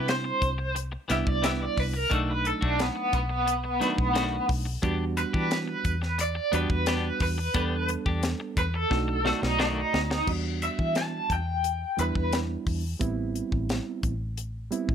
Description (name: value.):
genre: straight-eighth soul blues.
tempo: 88 BPM.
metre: 4/4.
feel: straight.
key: E minor.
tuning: A4 = 440 Hz.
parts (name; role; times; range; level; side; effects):
raw garage guitar; melody; 0.0-12.3 s; B3 to A5; -28 LUFS; equal; overdrive, tremolo.
reed electric piano; accompaniment; 0.0-14.9 s; F#3 to D5; -33 LUFS; right 6 dB; overdrive, plate reverb.
clean electric guitar; stabs; 0.0-10.1 s; D#3 to G4; -33 LUFS; left 5 dB; tremolo.
vintage muted fingered electric bass; bass; 0.0-14.9 s; A1 to E3; -30 LUFS; equal; none.
tight funk drum kit; drums; 0.1-14.9 s; crash cymbal, hi-hat, kick drum, snare drum; -31 LUFS; left 1 dB; none.
room: light reverb.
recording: none.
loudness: -25 LUFS.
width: side -8 dB against mid.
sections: 0.0-10.3 A section; 10.3-14.9 B section.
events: overdriven electric guitar solo 0.0-10.3; drum fill 8.9-10.3.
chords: 0.0 Cmaj7; 2.1 B7#9; 4.8 Em7; 8.9 B7#9; 10.3 Em7; 13.0 Am7.